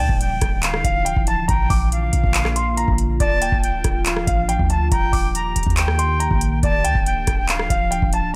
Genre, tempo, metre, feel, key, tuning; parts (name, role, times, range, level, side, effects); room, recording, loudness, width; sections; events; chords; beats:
hip hop, trap; 140 BPM; 4/4; half-time; D minor; A4 = 437 Hz
clear concert grand piano; melody; 0.0-8.3 s; D5 to D6; -27 LUFS; equal; low-pass filter, tape echo
jazz flute; second line; 0.0-8.3 s; F5 to Bb5; -28 LUFS; equal; tape echo
glassy FM pad; sustained chords; 0.0-8.4 s; D3 to F5; -30 LUFS; equal; ensemble chorus, built-in reverb
clean 808-style bass; bass; 0.0-8.3 s; C1 to Eb2; -24 LUFS; equal
booming analog drum machine; drums; 0.1-8.2 s; handclaps, hi-hat, kick drum, rim click; -23 LUFS; equal; overdrive
digital ambience; -19 LUFS; mono
0.0-8.4 A section
0.0 Dmadd9; 1.5 Bb; 3.2 Dm; 4.9 Eb; 6.6 Dm
0.20 0.63 1.06 | 1.49 1.92 2.35 2.77 | 3.20 3.63 4.06 4.49 | 4.92 5.34 5.77 6.20 | 6.63 7.06 7.49 7.92 | 8.35